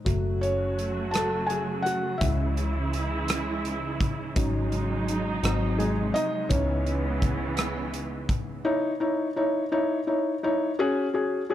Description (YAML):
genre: six-eight pop ballad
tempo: 56 BPM (dotted quarters)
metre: 6/8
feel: straight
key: C# minor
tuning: A4 = 440 Hz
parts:
  - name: felt-muted upright piano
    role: accompaniment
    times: 0.0-11.5 s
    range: E3 to A5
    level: -27 LUFS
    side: left 1 dB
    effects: none
  - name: muted studio string section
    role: sustained chords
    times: 0.1-8.6 s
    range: B#2 to F#4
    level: -31 LUFS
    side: right 2 dB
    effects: none
  - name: vintage muted fingered electric bass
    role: bass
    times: 0.1-8.6 s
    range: F#1 to C#2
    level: -30 LUFS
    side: equal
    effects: none
  - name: modern studio drum kit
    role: drums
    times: 0.1-8.5 s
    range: hi-hat, kick drum, rim click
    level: -30 LUFS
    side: equal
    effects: none
room: light reverb, studio ambience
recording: dark, warm production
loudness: -24 LUFS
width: side -12 dB against mid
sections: 0.0-8.7 A section; 8.7-11.5 B section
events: felt piano solo 0.0-8.7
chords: 0.1 F#madd9; 2.2 C#m; 4.4 G#7sus4; 5.4 G#7; 6.5 C#m7; 8.7 C#madd9; 10.8 F#sus2/C#